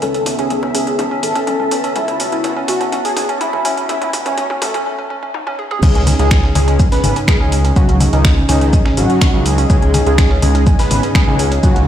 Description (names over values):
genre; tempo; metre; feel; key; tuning
melodic techno; 124 BPM; 4/4; straight; C# minor; A4 = 438 Hz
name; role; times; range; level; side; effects
wide unison lead; melody; 0.0-11.8 s; A3 to B4; -20 LUFS; left 1 dB; analog chorus, sidechain pumping, digital delay
warm analog pad; sustained chords; 0.0-11.9 s; C#3 to E5; -25 LUFS; right 1 dB; chorus, sidechain pumping
woody wave-folded pluck; arpeggios; 0.0-11.8 s; C#4 to G#4; -22 LUFS; right 1 dB; chorus, cassette tape, sidechain pumping, digital delay
fat analog bass; bass; 0.0-11.9 s; G#1 to C#2; -17 LUFS; equal; tube saturation, sidechain pumping
analog drone; drone; 0.0-4.9 s; C#3 to D#3; -39 LUFS; equal; none
deep house drum kit; drums; 0.0-11.9 s; congas, crash cymbal, finger snaps, hi-hat, toms; -21 LUFS; left 1 dB; overdrive, high-pass filter on hats, small room ambience, high-pass filter on perc, high-pass filter on toms, high-pass filter on cymbals, high-pass filter on snare
deep dark ambient pad; texture; 0.0-11.9 s; B3 to A5; -26 LUFS; left 1 dB; chorus, built-in reverb, sidechain pumping
soft supersaw; second line; 5.8-11.8 s; D#3 to B3; -23 LUFS; equal; ensemble chorus, sidechain pumping, digital delay
dusty soul sampler-style drum kit; drums; 5.8-11.9 s; hi-hat, shaker, snare drum; -30 LUFS; equal; overdrive, high-pass filter on perc, small room ambience, high-pass filter on snare, high-pass filter on hats
electronic kick drum; drums; 5.8-11.7 s; none; -12 LUFS; equal; overdrive, small room ambience
room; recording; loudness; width
light reverb; played on a big sound system in a bare room, stone room reverb, high-pass filter; -12 LUFS; side -10 dB against mid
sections
0.0-5.8 A section; 5.8-11.9 B section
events
build-up 0.0-5.8; drum fill 0.0-4.9, 5.3-5.8; filter sweep on synth pluck 0.0-5.8; filter sweep on analog synth lead 0.0-5.8; filter sweep on analog synth pad 0.0-5.8; break 4.9-5.8; drop 5.8-11.9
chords
0.0 Asus2; 5.8 C#sus2